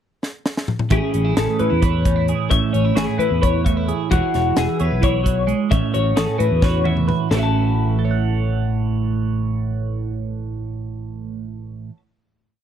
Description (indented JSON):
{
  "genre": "math rock and midwest emo",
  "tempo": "263 BPM (eighths)",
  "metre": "7/8",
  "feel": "straight",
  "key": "A major",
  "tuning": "A4 = 440 Hz",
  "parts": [
    { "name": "crisp fusion drum kit", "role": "drums", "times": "0.2-7.4 s", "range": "hi-hat, kick drum, snare drum, toms", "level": "-21 LUFS", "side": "equal", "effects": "none" },
    { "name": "twelve-string electric guitar", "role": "accompaniment", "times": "0.9-12.1 s", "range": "A2 to F#5", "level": "-22 LUFS", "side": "right 6 dB", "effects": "phaser" },
    { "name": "twelve-string electric guitar", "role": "arpeggios", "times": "0.9-12.0 s", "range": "F#4 to A5", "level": "-23 LUFS", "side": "left 8 dB", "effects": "spring reverb" },
    { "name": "fingered electric bass", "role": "bass", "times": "0.9-11.9 s", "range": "E1 to A2", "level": "-22 LUFS", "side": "left 1 dB", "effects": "none" }
  ],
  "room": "studio ambience",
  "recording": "dry, close 1970s-style studio recording",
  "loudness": "-17 LUFS",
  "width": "side -9 dB against mid",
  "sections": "0.0-0.9 pickup bar; 0.9-7.3 A section; 7.3-10.5 final chord",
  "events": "drum fill 0.2-0.9, 6.6-7.3",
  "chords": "0.0 N.C.; 0.9 Amaj7; 4.1 E69; 5.7 A69"
}